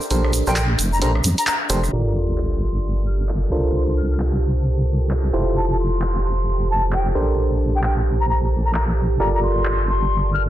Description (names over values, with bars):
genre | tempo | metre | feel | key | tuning
UK garage, two-step garage | 132 BPM | 4/4 | swing 61% on 16ths | G dorian | A4 = 440 Hz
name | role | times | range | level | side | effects
ethereal airy pad | sustained chords | 0.0-10.5 s | D4 to A5 | -31 LUFS | right 6 dB | ensemble chorus, built-in reverb
egg shaker | percussion | 0.0-1.9 s | none | -28 LUFS | right 3 dB | none
FM electric piano | stabs | 0.1-10.5 s | D4 to D5 | -25 LUFS | right 1 dB | chorus, digital delay
deep soft wobble bass | bass | 0.1-10.5 s | F1 to F2 | -20 LUFS | equal | chorus, tube saturation
punchy analog drum machine | drums | 0.1-9.8 s | handclaps, hi-hat, rim click | -28 LUFS | equal | low-pass filter on snare, low-pass filter on hats, low-pass filter on room
bright wooden flute | melody | 0.5-10.4 s | G5 to F6 | -26 LUFS | left 2 dB | digital delay
sub drop | sound effects | 1.9-3.7 s | none | -26 LUFS | equal | none
room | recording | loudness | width
light reverb | dense, heavily limited modern master, low-pass filter | -18 LUFS | side -13 dB against mid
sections
0.0-1.9 A section; 1.9-10.5 B section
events
band accent 1.5; impact 1.9-3.7; filter sweep on drum 1.9-10.5; filter sweep 1.9-10.5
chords
0.0 Bbmaj13; 1.9 Gm9; 3.5 C13sus4; 5.3 Fmaj9; 7.2 Bbmaj13; 9.2 Gm9